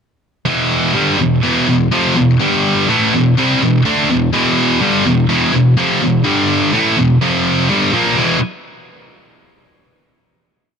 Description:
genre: metal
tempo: 125 BPM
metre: 4/4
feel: straight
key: E minor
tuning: A4 = 443 Hz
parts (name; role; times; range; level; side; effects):
- scooped high-gain guitar; solo; 0.5-8.4 s; E2 to D4; -12 LUFS; equal; distortion
room: little or no reverb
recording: dark, warm production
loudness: -12 LUFS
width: side -6 dB against mid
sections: 0.5-8.2 riff; 8.2-10.1 final chord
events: none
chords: 0.5 Em; 2.4 G5; 2.9 Em; 6.3 G5; 6.7 E5; 7.2 F5; 7.7 Gm7; 8.2 E5

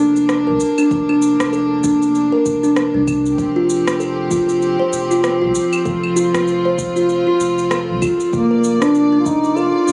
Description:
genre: organic downtempo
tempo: 97 BPM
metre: 4/4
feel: swing 58% on 16ths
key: F major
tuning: A4 = 440 Hz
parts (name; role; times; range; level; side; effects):
- rich chamber string section; sustained chords; 0.0-9.9 s; F3 to D5; -26 LUFS; equal; sidechain pumping
- kalimba; arpeggios; 0.0-9.9 s; D4 to C5; -18 LUFS; equal; digital delay
- warm sub bass; bass; 0.0-9.9 s; F1 to C2; -31 LUFS; equal; tube saturation, sidechain pumping
- electronic shaker, rim click and claves; drums; 0.2-9.9 s; none; -27 LUFS; equal; overdrive
- electronic kick drum; drums; 0.9-9.4 s; none; -28 LUFS; equal; none
- dark duduk; melody; 8.3-9.9 s; Bb3 to F4; -18 LUFS; equal; digital delay
room: light reverb, studio reverb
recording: recorded on a phone in the room, studio ambience, compression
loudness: -16 LUFS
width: mono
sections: 0.0-9.9 A section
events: none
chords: 0.0 Bb/F; 3.4 Fsus2; 8.3 Bb/F

